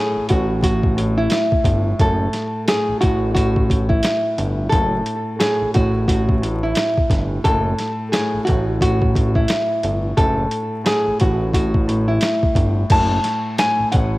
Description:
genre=hip hop, boom-bap hip-hop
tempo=88 BPM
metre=4/4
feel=swing 61% on 16ths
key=F# minor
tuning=A4 = 441 Hz
part: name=nylon-string guitar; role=melody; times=0.0-14.2 s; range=E4 to A5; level=-20 LUFS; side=equal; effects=high-pass filter, low-pass filter, cassette tape, analog delay
part: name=dark upright piano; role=accompaniment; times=0.0-14.2 s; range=A2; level=-25 LUFS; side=left 1 dB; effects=cassette tape, high-pass filter, low-pass filter
part: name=fat analog bass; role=bass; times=0.2-14.2 s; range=F#1 to A1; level=-20 LUFS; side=equal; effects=none
part: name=boom bap sampler-style drum kit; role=drums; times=0.3-14.1 s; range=crash cymbal, hi-hat, kick drum, snare drum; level=-20 LUFS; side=equal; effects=none
room=digital ambience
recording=home recording on cassette, vinyl crackle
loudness=-16 LUFS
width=side -19 dB against mid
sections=0.0-12.9 A section; 12.9-14.2 B section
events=none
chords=0.0 F#m7; 12.9 F#m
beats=0.63 1.31 | 1.99 2.67 3.35 4.04 | 4.72 5.40 6.08 6.76 | 7.45 8.13 8.81 9.49 | 10.17 10.86 11.54 12.22 | 12.90 13.58

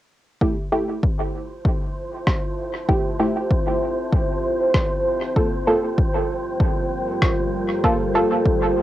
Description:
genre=ambient dub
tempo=97 BPM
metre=4/4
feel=swing 56% on 16ths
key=unclear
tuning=A4 = 438 Hz
part: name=deep dark ambient pad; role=sustained chords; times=2.1-8.8 s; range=G3 to A5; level=-25 LUFS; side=equal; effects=chorus, built-in reverb, cassette tape
part: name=filtered dub chord stab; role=stabs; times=0.4-8.4 s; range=A3 to A4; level=-22 LUFS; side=right 1 dB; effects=chorus, cassette tape, dub echo
part: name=electronic kick drum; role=drums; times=0.4-8.6 s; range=none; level=-22 LUFS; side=equal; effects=overdrive, cassette tape
part: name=wind-like tuned noise texture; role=texture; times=1.3-8.8 s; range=C5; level=-29 LUFS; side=right 1 dB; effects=built-in reverb, cassette tape
part: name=electronic rim click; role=drums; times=2.3-7.4 s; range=none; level=-26 LUFS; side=equal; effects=cassette tape, dub echo
room=light reverb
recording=home recording on cassette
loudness=-19 LUFS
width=side -14 dB against mid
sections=0.4-8.8 A section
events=none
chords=0.4 Fmaj9; 5.4 Gm9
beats=| 0.41 1.03 1.65 2.27 | 2.89 3.51 4.13 4.74 | 5.36 5.98 6.60 7.22 | 7.84 8.46

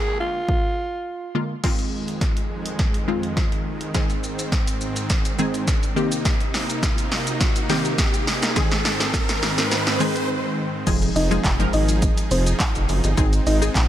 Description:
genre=dance-pop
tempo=104 BPM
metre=4/4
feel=straight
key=F minor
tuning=A4 = 441 Hz
part: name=raspy alto saxophone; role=melody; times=0.0-1.3 s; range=F4 to Ab4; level=-26 LUFS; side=right 2 dB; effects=digital delay
part: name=punchy chord stab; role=accompaniment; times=0.0-13.8 s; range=D3 to Bb4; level=-26 LUFS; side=left 1 dB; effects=chorus, sidechain pumping
part: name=punchy analog drum machine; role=drums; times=0.5-13.9 s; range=crash cymbal, handclaps, hi-hat, kick drum, shaker, snare drum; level=-22 LUFS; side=equal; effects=none
part: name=supersaw chords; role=sustained chords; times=1.6-13.9 s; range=F2 to Ab4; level=-28 LUFS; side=right 1 dB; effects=sidechain pumping
part: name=riser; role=sound effects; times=4.6-10.3 s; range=none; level=-30 LUFS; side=right 1 dB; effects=none
part: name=chorused synth bass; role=bass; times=10.9-13.9 s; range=F1 to Bb1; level=-21 LUFS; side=equal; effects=sidechain pumping
part: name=soft round pluck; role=melody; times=11.2-13.6 s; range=C4 to Eb5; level=-26 LUFS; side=equal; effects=chorus, digital delay
room=little or no reverb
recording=none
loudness=-19 LUFS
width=side -12 dB against mid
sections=0.0-1.6 A section; 1.6-10.9 B section; 10.9-13.9 C section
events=break 1.1-1.6, 10.3-10.9; build-up 1.6-10.9; drum fill 1.6-10.3; riser 4.6-10.9; drop 10.9-13.9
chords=0.0 Bb7; 1.6 Fm7; 3.9 Ab; 6.0 Cm7; 8.6 Ab; 10.9 Fm7; 13.2 Ab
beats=0.48 1.06 | 1.64 2.22 2.79 3.37 | 3.95 4.52 5.10 5.68 | 6.25 6.83 7.41 7.99 | 8.56 9.14 9.72 10.29 | 10.87 11.45 12.02 12.60 | 13.18 13.75

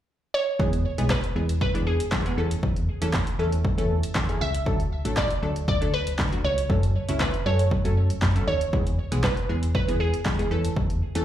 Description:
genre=dance-pop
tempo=118 BPM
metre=4/4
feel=straight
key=unclear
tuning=A4 = 440 Hz
part: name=glassy wavetable pluck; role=melody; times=0.3-10.5 s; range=G#4 to E5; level=-29 LUFS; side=right 2 dB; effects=chorus, tape echo, slapback echo
part: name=punchy chord stab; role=accompaniment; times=0.6-11.2 s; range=E3 to A4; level=-30 LUFS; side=equal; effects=chorus, slapback echo
part: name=solid FM bass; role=bass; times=0.6-11.2 s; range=A1 to F#2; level=-25 LUFS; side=equal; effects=sidechain pumping
part: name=deep house drum kit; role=drums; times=0.6-11.2 s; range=handclaps, hi-hat, kick drum, snare drum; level=-27 LUFS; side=equal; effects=overdrive
room=light reverb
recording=live gig heard through the venue's PA, club reverb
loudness=-22 LUFS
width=side -11 dB against mid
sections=0.6-11.2 A section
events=none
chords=0.0 N.C.; 0.6 E; 2.4 A/E; 4.7 D; 6.7 F#m; 8.7 E; 10.5 A/E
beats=0.09 | 0.60 1.10 1.61 2.12 | 2.63 3.14 3.65 4.16 | 4.66 5.17 5.68 6.19 | 6.70 7.21 7.71 8.22 | 8.73 9.24 9.75 10.26 | 10.77

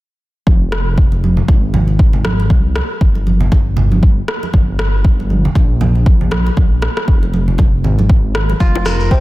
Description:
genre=afro house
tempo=118 BPM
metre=4/4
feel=swing 57% on 16ths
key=F minor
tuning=A4 = 440 Hz
part: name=dark detuned saw bass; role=bass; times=0.5-9.2 s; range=F1 to C2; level=-16 LUFS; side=equal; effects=sidechain pumping
part: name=electronic kick drum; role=drums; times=0.5-9.2 s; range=none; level=-11 LUFS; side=equal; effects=overdrive
part: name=congas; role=percussion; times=0.5-9.0 s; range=none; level=-20 LUFS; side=right 2 dB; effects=none
part: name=electronic rim click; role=drums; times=0.7-9.0 s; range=none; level=-22 LUFS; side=equal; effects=overdrive
part: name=kora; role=arpeggios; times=8.6-9.2 s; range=C4 to Bb4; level=-19 LUFS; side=equal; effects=sidechain pumping, digital delay
part: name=shekere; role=percussion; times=8.6-9.2 s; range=none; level=-29 LUFS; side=left 3 dB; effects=none
part: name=bongos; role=percussion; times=8.8 s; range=none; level=-25 LUFS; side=left 7 dB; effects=none
room=studio reverb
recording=dense, heavily limited modern master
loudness=-11 LUFS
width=side -18 dB against mid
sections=0.5-9.2 A section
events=none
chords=0.5 Fm; 2.5 C5; 4.5 Gm; 6.6 Bb5; 8.6 F5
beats=| 0.47 0.98 1.49 1.99 | 2.50 3.01 3.52 4.03 | 4.54 5.04 5.55 6.06 | 6.57 7.08 7.59 8.10 | 8.60 9.11

